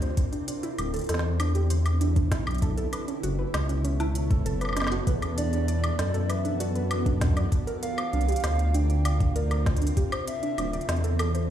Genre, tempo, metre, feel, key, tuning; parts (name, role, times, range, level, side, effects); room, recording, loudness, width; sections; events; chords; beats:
IDM; 98 BPM; 4/4; straight; E minor; A4 = 440 Hz
granular cloud pad; sustained chords; 0.0-11.5 s; B2 to D5; -34 LUFS; equal; built-in reverb
warbly dusty pluck; arpeggios; 0.0-11.4 s; C#4 to D5; -33 LUFS; right 3 dB; chorus, digital delay
dark detuned saw bass; bass; 0.0-11.5 s; D1 to F#2; -26 LUFS; equal; tube saturation
organic electronic drum kit; drums; 0.0-11.5 s; hi-hat, snare drum, woodblock; -34 LUFS; equal
electronic kick drum; drums; 0.2-10.1 s; -24 LUFS; equal
warbly nostalgic lead; melody; 5.4-11.2 s; B4 to G5; -34 LUFS; right 2 dB; chorus, digital delay
light reverb; played on a big sound system in a bare room, large studio reverb; -24 LUFS; side -10 dB against mid
0.0-11.5 A section
0.2 D9sus4; 2.3 B9sus4; 5.1 E9sus4; 7.5 C9sus4; 10.0 D9sus4
| 0.17 0.79 1.40 2.01 | 2.62 3.23 3.85 4.46 | 5.07 5.68 6.29 6.91 | 7.52 8.13 8.74 9.36 | 9.97 10.58 11.19